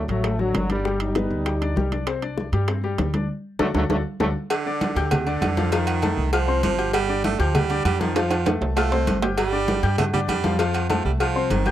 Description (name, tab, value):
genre	latin, salsa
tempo	197 BPM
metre	4/4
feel	straight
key	unclear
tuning	A4 = 441 Hz
part	clear trombone section	melody	0.0-4.3 s	D3 to Eb4	-27 LUFS	equal	none
part	clear grand piano	accompaniment	0.0-11.7 s	F3 to G6	-27 LUFS	left 6 dB	none
part	upright bass	bass	0.0-11.7 s	G1 to G2	-25 LUFS	right 1 dB	none
part	bongos and cowbell	percussion	0.1-11.7 s	none	-30 LUFS	left 5 dB	none
part	congas	percussion	0.1-11.7 s	none	-28 LUFS	equal	none
part	timbales and agogo bells	percussion	0.1-11.7 s	none	-29 LUFS	right 6 dB	none
part	bright baritone saxophone	second line	4.5-11.7 s	C3 to A3	-26 LUFS	right 8 dB	none
room	light reverb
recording	dry, close 1970s-style studio recording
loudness	-20 LUFS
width	side -12 dB against mid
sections	0.0-4.5 A section; 4.5-11.7 B section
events	band accent 3.3-4.5; drum fill 3.6-4.5, 8.2-9.4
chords	0.0 D; 0.9 G; 2.1 Csus2; 3.3 D; 4.5 G5; 5.7 F; 6.9 G5; 8.2 F; 9.4 G5; 10.6 F